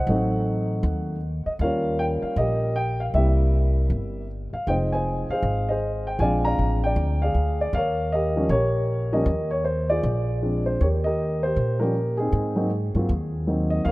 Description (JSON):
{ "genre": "jazz piano trio", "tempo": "157 BPM", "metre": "4/4", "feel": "swing 63% on 8ths", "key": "unclear", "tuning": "A4 = 441 Hz", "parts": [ { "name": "dark baby grand piano", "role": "melody", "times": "0.0-13.9 s", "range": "F3 to Bb5", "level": "-24 LUFS", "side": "equal", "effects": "none" }, { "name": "upright bass", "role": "bass", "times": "0.0-13.9 s", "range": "F1 to Bb2", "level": "-24 LUFS", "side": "equal", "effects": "none" } ], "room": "light reverb, small room ambience", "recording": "rough home demo mix", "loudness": "-21 LUFS", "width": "side -20 dB against mid", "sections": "0.0-10.8 A section; 10.8-13.9 A section", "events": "none", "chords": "0.1 Adim7; 1.6 Eb7; 3.1 C7; 4.7 Fm7; 6.2 Bb7; 7.7 Eb7; 10.0 Bb7; 10.8 Eb; 12.3 Ab7", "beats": "| 0.07 0.46 0.84 1.22 | 1.60 1.99 2.37 2.75 | 3.14 3.52 3.90 4.29 | 4.67 5.05 5.43 5.82 | 6.20 6.58 6.97 7.35 | 7.73 8.12 8.50 8.88 | 9.27 9.65 10.03 10.41 | 10.80 11.18 11.56 11.94 | 12.33 12.71 13.09 13.47 | 13.86" }